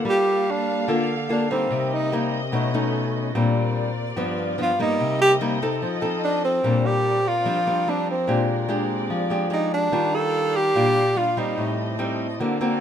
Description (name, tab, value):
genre	bossa nova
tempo	146 BPM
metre	4/4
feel	straight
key	Bb major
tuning	A4 = 440 Hz
part	nylon-string guitar	accompaniment	0.0-12.8 s	G2 to A4	-23 LUFS	left 2 dB	none
part	dark studio string section	sustained chords	0.0-12.8 s	Bb3 to F5	-31 LUFS	right 2 dB	none
part	breathy tenor saxophone	melody	0.1-2.1, 4.6-11.8 s	C4 to A4	-21 LUFS	right 1 dB	none
room	light reverb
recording	minimal, uncompressed stereo recording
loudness	-20 LUFS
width	side -9 dB against mid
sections	0.0-6.6 A section; 6.6-12.8 B section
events	tenor saxophone solo 0.0-6.6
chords	0.1 Gm9; 1.7 Cm7; 2.5 B9; 3.4 Bb69; 4.2 G7; 5.0 Cm7; 5.8 F7; 6.6 Bb69; 8.3 Bb13; 9.9 Ebmaj9; 11.6 Am7b5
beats	| 0.07 0.48 0.89 1.30 | 1.71 2.12 2.53 2.94 | 3.35 3.76 4.17 4.58 | 4.99 5.40 5.82 6.23 | 6.64 7.05 7.46 7.87 | 8.28 8.69 9.11 9.52 | 9.93 10.34 10.75 11.16 | 11.57 11.98 12.40